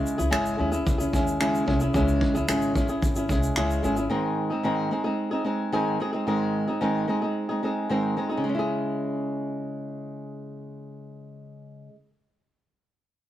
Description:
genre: acoustic pop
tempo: 111 BPM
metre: 4/4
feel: straight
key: C# harmonic minor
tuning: A4 = 444 Hz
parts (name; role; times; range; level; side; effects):
- flamenco guitar; accompaniment; 0.0-12.1 s; G#2 to G#4; -25 LUFS; equal; none
- vintage brush drum kit; drums; 0.1-4.1 s; finger snaps, kick drum, shaker; -28 LUFS; equal; none
- upright bass; bass; 0.2-4.1 s; G#1 to D#2; -29 LUFS; equal; none
room: light reverb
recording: rough rehearsal-room recording, warm saturation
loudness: -23 LUFS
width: side -12 dB against mid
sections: 0.0-8.4 A section; 8.4-12.8 B section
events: none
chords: 0.0 C#m; 4.1 G#; 8.4 C#m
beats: 0.32 0.86 1.40 | 1.94 2.48 3.02 3.56 | 4.10 4.64 5.18 5.73 | 6.27 6.81 7.35 7.90 | 8.44 8.98 9.52 10.07 | 10.61 11.15 11.70

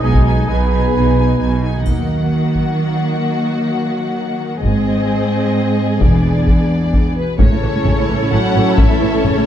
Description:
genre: cinematic, epic orchestral film score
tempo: 130 BPM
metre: 3/4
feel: straight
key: Eb minor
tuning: A4 = 442 Hz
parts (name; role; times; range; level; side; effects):
- warm symphonic violin section; melody; 0.0-9.5 s; B4 to Ab5; -26 LUFS; left 4 dB; none
- warm symphonic violin section; second line; 0.0-9.5 s; Eb4 to C#5; -25 LUFS; left 3 dB; none
- warm studio viola section; accompaniment; 0.0-9.5 s; E3 to E4; -24 LUFS; right 1 dB; none
- mellow French horn section; sustained chords; 0.0-9.5 s; Gb3 to D4; -22 LUFS; left 3 dB; none
- dark trumpet section; stabs; 0.0-1.6 s; Ab4 to Cb5; -21 LUFS; right 2 dB; none
- rich symphonic cello section; bass; 0.0-9.4 s; E2 to Eb3; -19 LUFS; right 2 dB; none
- rich symphonic double bass section; bass; 0.0-2.3, 4.6-9.3 s; E1 to Eb2; -19 LUFS; right 2 dB; none
- taiko ensemble; drums; 0.1-9.5 s; none; -16 LUFS; equal; none
- triangle; percussion; 1.9-2.7 s; none; -44 LUFS; equal; none
- dark trombone section; sustained chords; 7.2-9.5 s; B2 to F#3; -21 LUFS; right 3 dB; none
- clear symphonic string section; sustained chords; 7.4-9.5 s; C#4 to A5; -24 LUFS; left 2 dB; none
room: moderate scoring stage reverb, RT60 1.7 s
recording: dark, warm production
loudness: -13 LUFS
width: side -10 dB against mid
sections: 0.0-1.9 A section; 1.9-7.4 B section; 7.4-9.5 C section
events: none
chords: 0.0 Abm/Cb; 1.9 Ebm; 4.6 Ab; 6.0 E7; 7.4 A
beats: 0.02 | 0.48 0.94 1.41 | 1.87 2.33 2.79 | 3.25 3.71 4.17 | 4.64 5.10 5.56 | 6.02 6.48 6.94 | 7.41 7.87 8.33 | 8.79 9.25

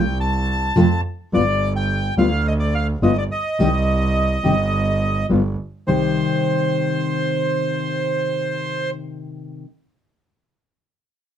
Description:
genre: tango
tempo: 106 BPM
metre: 4/4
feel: rubato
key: C minor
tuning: A4 = 442 Hz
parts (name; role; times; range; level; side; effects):
- bandoneon; melody; 0.0-8.9 s; C5 to A5; -22 LUFS; right 2 dB; none
- clear double bass; bass; 0.0-6.1 s; G1 to F2; -21 LUFS; right 2 dB; none
- nylon-string guitar; accompaniment; 0.8-9.7 s; C3 to G4; -20 LUFS; left 2 dB; none
room: little or no reverb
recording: close, detailed microphones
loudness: -18 LUFS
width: side -9 dB against mid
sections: 0.0-5.9 A section; 5.9-8.1 B section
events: none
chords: 0.0 F; 1.3 G7(no3); 3.6 Cm; 5.3 G7; 5.9 Cm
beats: 0.19 0.76 | 1.32 1.89 2.45 3.02 | 3.58 4.15 4.72 5.29 | 5.87 6.43 7.00 7.57

